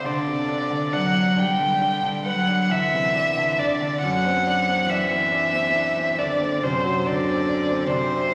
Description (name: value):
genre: classical, slow romantic movement for piano trio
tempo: 46 BPM (dotted quarters)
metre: 12/8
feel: rubato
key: unclear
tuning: A4 = 440 Hz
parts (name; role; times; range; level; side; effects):
- warm violin; melody; 0.0-8.3 s; C5 to G5; -24 LUFS; equal; none
- warm cello; second line; 0.0-8.3 s; C3 to G3; -28 LUFS; equal; none
- bright grand piano; accompaniment; 0.0-8.3 s; F#2 to D5; -29 LUFS; equal; none
room: wet recital hall reverb, RT60 1.4 s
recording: vinyl crackle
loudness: -22 LUFS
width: mono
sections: 0.0-8.3 A section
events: none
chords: 0.0 G; 4.0 D7/F#